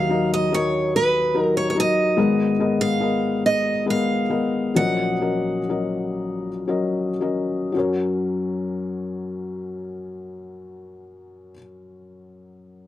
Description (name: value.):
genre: acoustic folk-pop ballad.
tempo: 36-48 BPM (dotted quarters).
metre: 6/8.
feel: straight.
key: F# major.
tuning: A4 = 440 Hz.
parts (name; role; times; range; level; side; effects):
picked steel-string acoustic guitar; melody; 0.0-6.6 s; B4 to F#5; -22 LUFS; right 3 dB; none.
felt-muted upright piano; accompaniment; 0.0-12.9 s; G#1 to D#5; -22 LUFS; left 3 dB; none.
room: small room reverb.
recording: dry, close 1970s-style studio recording.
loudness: -20 LUFS.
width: side -13 dB against mid.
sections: 0.0-7.7 A section; 7.7-11.1 B section.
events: slowing down 2.2-7.7.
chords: 0.0 D#m; 2.2 G#madd9; 4.7 F#6/A#; 7.7 F#.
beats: 0.93 | 2.17 3.43 | 4.75 6.17 | 7.75 9.41.